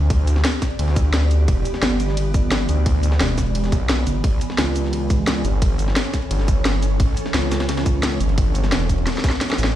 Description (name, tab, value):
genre	dark technical drum and bass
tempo	174 BPM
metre	4/4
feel	straight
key	unclear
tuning	A4 = 441 Hz
part	swarming drone	sustained chords	0.0-9.7 s	E3 to D5	-27 LUFS	right 1 dB	built-in reverb, sidechain pumping
part	wide detuned saw bass	bass	0.0-9.7 s	E1 to D2	-19 LUFS	equal	chorus, sidechain pumping
part	breakbeat sampler-style drum kit	drums	0.1-9.8 s	ride cymbal, snare drum	-32 LUFS	equal	high-pass filter on cymbals, high-pass filter on snare
part	drum and bass drum kit	drums	0.1-9.7 s	hi-hat, ride cymbal, shaker, snare drum	-24 LUFS	left 1 dB	none
part	electronic kick drum	drums	0.1-9.3 s	none	-20 LUFS	equal	none
part	pulsing pluck wobble bass	bass	1.8-8.2 s	E1 to C#2	-22 LUFS	equal	chorus
room	little or no reverb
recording	played on a big sound system in a bare room, large studio reverb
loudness	-17 LUFS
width	side -12 dB against mid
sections	0.0-9.8 A section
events	drop 0.0-9.8; drum fill 9.1-9.8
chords	0.0 Em7; 4.2 A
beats	| 0.10 0.45 0.79 1.14 | 1.48 1.83 2.17 2.52 | 2.86 3.21 3.55 3.90 | 4.24 4.58 4.93 5.27 | 5.62 5.96 6.31 6.65 | 7.00 7.34 7.69 8.03 | 8.38 8.72 9.07 9.41